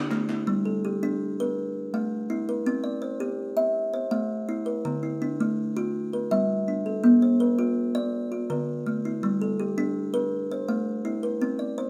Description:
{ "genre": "southern african traditional", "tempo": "110 BPM (dotted quarters)", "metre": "12/8", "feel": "straight", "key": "G equiheptatonic", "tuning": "A4 = 443 Hz", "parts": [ { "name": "kalimba", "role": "arpeggios", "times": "0.0-11.9 s", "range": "D3 to F5+29c", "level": "-27 LUFS", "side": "equal", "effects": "none" } ], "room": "moderate stone room reverb, RT60 1.1 s", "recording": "band playing live in one room", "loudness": "-27 LUFS", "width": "mono", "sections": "0.5-11.9 A section", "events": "none", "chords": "0.5 Gm; 1.6 A5; 2.7 C; 3.8 Am; 4.9 Dm; 5.9 Gm; 7.0 Bb; 8.1 Dm; 9.2 Gm; 10.3 Am" }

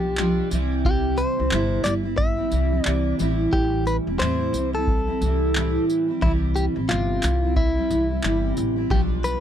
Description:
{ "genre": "acoustic pop", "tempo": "89 BPM", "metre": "4/4", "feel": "swing 60% on 16ths", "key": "C major", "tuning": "A4 = 438 Hz", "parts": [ { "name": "direct-recorded clean electric guitar", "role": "melody", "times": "0.0-9.4 s", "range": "E4 to E5", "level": "-26 LUFS", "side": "left 2 dB", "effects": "none" }, { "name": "fingerpicked steel-string acoustic guitar", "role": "accompaniment", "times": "0.0-9.4 s", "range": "A2 to F4", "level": "-24 LUFS", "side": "right 1 dB", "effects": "double-tracked left and right" }, { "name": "upright bass", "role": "bass", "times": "0.0-9.3 s", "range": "E1 to E2", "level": "-25 LUFS", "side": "equal", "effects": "none" }, { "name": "booming analog drum machine", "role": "drums", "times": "0.2-9.4 s", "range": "handclaps, kick drum, tambourine", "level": "-25 LUFS", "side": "equal", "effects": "none" } ], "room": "little or no reverb", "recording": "dry, close 1970s-style studio recording", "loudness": "-20 LUFS", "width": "side -9 dB against mid", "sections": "0.0-9.4 A section", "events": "none", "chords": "0.0 G7; 0.5 C; 3.2 Am7; 6.2 C; 8.9 G7" }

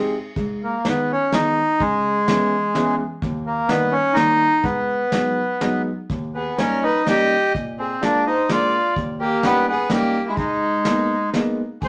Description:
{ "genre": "musette waltz", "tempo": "125 BPM", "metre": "3/4", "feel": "rubato", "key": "G# harmonic minor", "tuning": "A4 = 439 Hz", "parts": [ { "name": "warm upright piano", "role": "accompaniment", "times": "0.0-11.9 s", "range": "D#2 to Ab4", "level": "-27 LUFS", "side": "equal", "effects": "none" }, { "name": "soft brush drum kit", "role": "drums", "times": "0.4-11.9 s", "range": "hi-hat, kick drum, ride cymbal, snare drum", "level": "-29 LUFS", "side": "equal", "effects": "none" }, { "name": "accordion", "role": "melody", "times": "0.6-11.9 s", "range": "G#3 to C5", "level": "-22 LUFS", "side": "equal", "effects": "none" }, { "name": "warm violin", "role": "second line", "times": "6.4-11.9 s", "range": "D#4 to D#5", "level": "-27 LUFS", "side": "equal", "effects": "none" } ], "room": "moderate studio reverb, RT60 0.7 s", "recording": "none", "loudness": "-20 LUFS", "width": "mono", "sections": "0.4-11.8 A section", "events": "none", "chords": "0.4 G#m; 1.8 C#m7; 3.2 D#; 4.6 G#m7; 6.1 D#7; 7.5 A#7; 9.0 D#7; 10.4 G#madd9" }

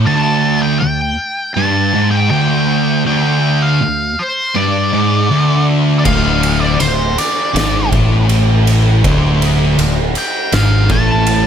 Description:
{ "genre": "stoner and doom metal", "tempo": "80 BPM", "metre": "4/4", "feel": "straight", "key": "D minor", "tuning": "A4 = 440 Hz", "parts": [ { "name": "high-gain distorted guitar", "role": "riff", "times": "0.0-11.5 s", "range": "D2 to A2", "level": "-20 LUFS", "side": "equal", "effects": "distortion" }, { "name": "thick fuzz guitar", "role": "riff", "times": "0.0-11.5 s", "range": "D2 to A2", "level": "-17 LUFS", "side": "left 6 dB", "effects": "distortion" }, { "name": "thick fuzz guitar", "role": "riff", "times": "0.0-11.5 s", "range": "D2 to A2", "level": "-16 LUFS", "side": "right 6 dB", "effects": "distortion" }, { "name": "octave-fuzz lead guitar", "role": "melody", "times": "0.1-11.5 s", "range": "C5 to A5", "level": "-18 LUFS", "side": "left 1 dB", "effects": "wah, distortion, digital delay" }, { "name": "growling fingered electric bass", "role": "bass", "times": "6.1-11.5 s", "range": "D1 to A1", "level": "-18 LUFS", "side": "equal", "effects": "overdrive" }, { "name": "oversized low-tuned drum kit", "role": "drums", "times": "6.1-11.4 s", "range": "crash cymbal, kick drum, ride cymbal, snare drum", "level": "-18 LUFS", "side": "equal", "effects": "none" } ], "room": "small room ambience", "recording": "none", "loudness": "-11 LUFS", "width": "side -8 dB against mid", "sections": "0.0-11.5 A section", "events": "none", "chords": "0.0 D5" }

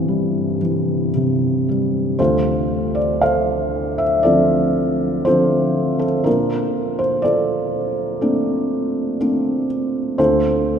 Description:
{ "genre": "classical, lyrical solo piano", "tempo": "55-62 BPM", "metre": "4/4", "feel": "rubato", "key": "D minor", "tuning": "A4 = 442 Hz", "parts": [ { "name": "felt-muted upright piano", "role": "solo", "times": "0.0-10.8 s", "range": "G1 to F5", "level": "-16 LUFS", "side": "equal", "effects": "none" } ], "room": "wet cathedral reverb, RT60 6.3 s", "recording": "recorded in a church or concert hall", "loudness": "-16 LUFS", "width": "side -7 dB against mid", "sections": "0.0-2.2 A section; 2.2-10.8 B section", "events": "none", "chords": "0.0 C6; 2.2 Dm7; 6.3 Bbmaj9; 10.2 Dm7" }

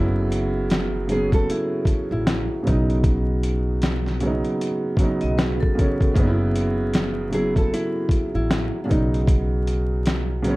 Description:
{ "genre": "lo-fi hip hop", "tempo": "77 BPM", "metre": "4/4", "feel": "swing 59% on 16ths", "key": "F# dorian", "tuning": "A4 = 444 Hz", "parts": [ { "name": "dark upright piano", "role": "accompaniment", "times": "0.0-10.6 s", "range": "C#3 to A4", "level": "-24 LUFS", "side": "right 1 dB", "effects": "none" }, { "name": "upright bass", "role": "bass", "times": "0.0-10.6 s", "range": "F#1 to B1", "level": "-24 LUFS", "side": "equal", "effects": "none" }, { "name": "dusty soul sampler-style drum kit", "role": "drums", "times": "0.3-10.6 s", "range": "hi-hat, kick drum, snare drum", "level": "-22 LUFS", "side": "equal", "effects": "none" }, { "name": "nylon-string guitar", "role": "melody", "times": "1.1-10.4 s", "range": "D4 to A4", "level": "-27 LUFS", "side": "equal", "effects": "none" }, { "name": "vibraphone with medium hard mallets", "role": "second line", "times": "5.2-6.1 s", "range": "A4 to D#5", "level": "-32 LUFS", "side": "left 2 dB", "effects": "tape echo" } ], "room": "light reverb", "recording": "dark, warm production, vinyl crackle", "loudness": "-19 LUFS", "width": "side -20 dB against mid", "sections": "0.0-10.6 A section", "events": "none", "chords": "0.0 F#m7; 2.7 Badd9; 6.2 F#m7; 8.9 Badd9" }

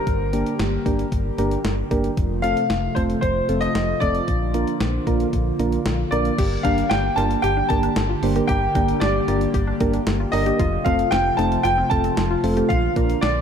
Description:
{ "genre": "synth-pop", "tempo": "114 BPM", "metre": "4/4", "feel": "straight", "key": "G minor", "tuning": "A4 = 440 Hz", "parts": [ { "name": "clear concert grand piano", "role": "melody", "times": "0.0-13.4 s", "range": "Bb4 to A5", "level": "-24 LUFS", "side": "equal", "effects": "analog chorus, analog delay" }, { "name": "chorused pulse-width pad", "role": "sustained chords", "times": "0.0-13.4 s", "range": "C3 to G4", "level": "-26 LUFS", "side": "equal", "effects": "none" }, { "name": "solid FM bass", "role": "bass", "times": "0.1-13.4 s", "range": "F1 to Bb1", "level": "-25 LUFS", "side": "equal", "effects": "none" }, { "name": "clean 12-bit digital drum machine", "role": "drums", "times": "0.1-13.3 s", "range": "crash cymbal, hi-hat, kick drum, snare drum", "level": "-26 LUFS", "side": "equal", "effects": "none" }, { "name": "soft electric-piano-like synth keys", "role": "accompaniment", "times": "0.3-13.2 s", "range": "A3 to C5", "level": "-25 LUFS", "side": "right 2 dB", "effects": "chorus" }, { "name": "analog pluck", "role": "arpeggios", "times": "6.4-13.4 s", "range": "C4 to G4", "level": "-30 LUFS", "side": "left 4 dB", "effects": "chorus, analog delay" } ], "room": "moderate plate reverb, RT60 2.2 s", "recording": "dreamy mix soaked in reverb", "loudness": "-18 LUFS", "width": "side -7 dB against mid", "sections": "0.0-6.4 A section; 6.4-13.4 B section", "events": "none", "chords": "0.0 Gm; 2.2 F; 4.3 Bb; 6.4 Gm; 10.6 F; 12.7 Bb" }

